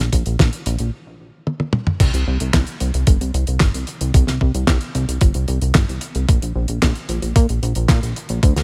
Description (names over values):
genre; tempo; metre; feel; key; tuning
italo disco; 112 BPM; 4/4; straight; unclear; A4 = 438 Hz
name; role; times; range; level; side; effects
chorused synth bass; bass; 0.0-8.6 s; G1 to Bb2; -22 LUFS; equal; none
damped 70s drum kit; drums; 0.0-8.6 s; crash cymbal, handclaps, hi-hat, snare drum, toms; -24 LUFS; equal; none
electronic kick drum; drums; 0.1-8.5 s; none; -17 LUFS; equal; overdrive
room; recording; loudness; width
little or no reverb; none; -19 LUFS; mono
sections
0.0-2.0 A section; 2.0-8.6 B section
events
stop 0.9-2.0; drum fill 1.5-2.0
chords
none